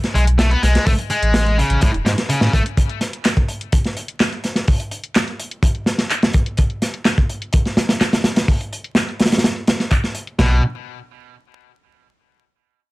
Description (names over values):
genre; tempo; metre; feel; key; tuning
breakbeat, breaks; 126 BPM; 4/4; straight; unclear; A4 = 440 Hz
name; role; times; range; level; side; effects
crunchy breakbeat drum kit; drums; 0.0-10.5 s; crash cymbal, hi-hat, kick drum, snare drum; -17 LUFS; equal; none
garage drum kit; drums; 0.0-10.4 s; handclaps, hi-hat; -24 LUFS; equal; low-pass filter on hats, low-pass filter on snare
high-gain distorted guitar; riff; 0.1-2.6, 10.4-10.6 s; G#2 to B3; -20 LUFS; equal; distortion, tube saturation, ping-pong delay
saturated sub bass; bass; 0.1-2.6, 10.4-10.6 s; E1 to A2; -16 LUFS; equal; none
room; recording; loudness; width
little or no reverb; vinyl crackle; -16 LUFS; side -20 dB against mid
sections
0.0-10.4 A section; 10.4-12.3 B section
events
none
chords
0.0 Esus4 (rootless); 0.9 Amaj7; 2.8 N.C.